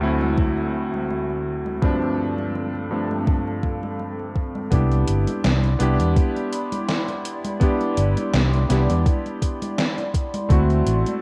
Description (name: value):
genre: vaporwave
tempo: 83 BPM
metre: 4/4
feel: swing 54% on 16ths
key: C major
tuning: A4 = 438 Hz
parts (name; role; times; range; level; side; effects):
- warm electric grand piano; accompaniment; 0.0-11.2 s; D2 to G4; -27 LUFS; equal; subtle chorus, analog delay
- warbly tape-like pad; sustained chords; 0.0-11.2 s; D2 to C6; -32 LUFS; equal; chorus, built-in reverb, phaser
- gated 80s digital drum machine; drums; 0.2-11.2 s; congas, hi-hat, snare drum; -31 LUFS; equal; gated reverb, gated reverb snare, overdrive
- electronic kick drum; drums; 0.4-10.7 s; none; -22 LUFS; equal; overdrive
- fingered electric bass; bass; 4.7-11.0 s; G1 to E2; -21 LUFS; equal; none
room: light reverb, digital ambience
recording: rough home demo mix, cassette tape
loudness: -22 LUFS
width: mono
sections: 0.0-4.7 A section; 4.7-11.2 B section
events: none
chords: 0.0 D7; 1.8 G7sus4; 4.7 Cmaj9; 10.5 D7